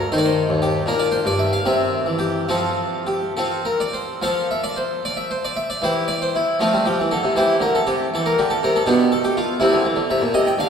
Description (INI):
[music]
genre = classical, baroque-style suite movement for harpsichord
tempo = 68-82 BPM (dotted quarters)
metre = 6/8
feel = rubato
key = F major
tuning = A4 = 440 Hz
[part]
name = harpsichord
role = solo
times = 0.0-10.7 s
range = Eb2 to G5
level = -18 LUFS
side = equal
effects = none
[sound]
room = wet cathedral reverb, RT60 6.1 s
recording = heard from further back in the room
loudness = -18 LUFS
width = side -7 dB against mid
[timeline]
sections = 0.0-4.2 A section; 4.2-10.7 B section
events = none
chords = 0.1 N.C.; 0.8 Gm/Bb; 1.6 C; 2.5 F; 5.8 Em7; 6.6 F; 7.4 C; 8.9 Bm7b5; 9.6 C